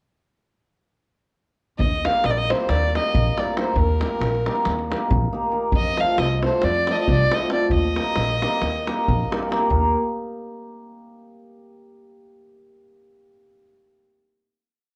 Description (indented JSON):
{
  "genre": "balkan folk, Balkan wedding band",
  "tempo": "272 BPM (eighths)",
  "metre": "9/8",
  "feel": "straight",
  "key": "Eb major",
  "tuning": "A4 = 440 Hz",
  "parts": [
    { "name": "dark fiddle", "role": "melody", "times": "1.8-9.3 s", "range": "Bb4 to F5", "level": "-26 LUFS", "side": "equal", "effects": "none" },
    { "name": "upright bass", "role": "bass", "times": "1.8-9.9 s", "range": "Bb1 to F2", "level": "-26 LUFS", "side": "equal", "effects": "tube saturation" },
    { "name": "davul", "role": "percussion", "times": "1.8-9.9 s", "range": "none", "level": "-28 LUFS", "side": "equal", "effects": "none" },
    { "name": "cimbalom", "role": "accompaniment", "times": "2.0-9.9 s", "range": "A3 to Bb4", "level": "-27 LUFS", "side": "equal", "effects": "none" }
  ],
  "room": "moderate studio reverb, RT60 0.5 s",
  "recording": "worn, warbling old tape, cassette tape, warbly pitch drift",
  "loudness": "-21 LUFS",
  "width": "mono",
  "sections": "1.8-9.7 A section; 9.7-11.7 final chord",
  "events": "none",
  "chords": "1.8 Eb; 5.7 F; 7.7 Eb"
}